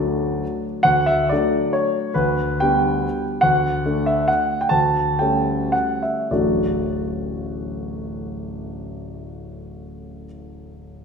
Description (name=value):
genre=classical, romantic triple-time dance for piano with dotted rhythms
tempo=95-155 BPM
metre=3/4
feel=rubato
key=D major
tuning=A4 = 440 Hz
part: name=warm grand piano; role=solo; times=0.0-11.0 s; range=D1 to A5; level=-19 LUFS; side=equal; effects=none
room=wet recital hall reverb, RT60 1.5 s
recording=recorded in a church or concert hall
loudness=-18 LUFS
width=side -6 dB against mid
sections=0.9-6.3 A section; 6.3-9.7 B section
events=slowing down 2.8-6.3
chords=0.0 D; 2.2 G/D; 3.4 D; 4.7 A7/D; 6.3 D